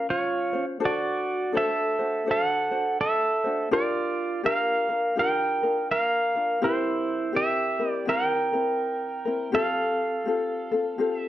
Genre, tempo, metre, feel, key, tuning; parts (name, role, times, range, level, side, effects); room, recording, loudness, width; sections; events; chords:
Hawaiian; 83 BPM; 4/4; swing 64% on 8ths; F major; A4 = 440 Hz
pedal steel guitar; melody; 0.0-11.3 s; E4 to G5; -24 LUFS; right 2 dB
ukulele; accompaniment; 0.0-11.3 s; C4 to C5; -29 LUFS; left 3 dB; plate reverb
wet studio reverb, RT60 0.6 s; dark, warm production; -23 LUFS; side -13 dB against mid
0.0-11.3 A section
0.0 Bbmadd9 (rootless); 0.8 D7; 3.7 Gm7; 6.6 C7; 9.5 Fadd9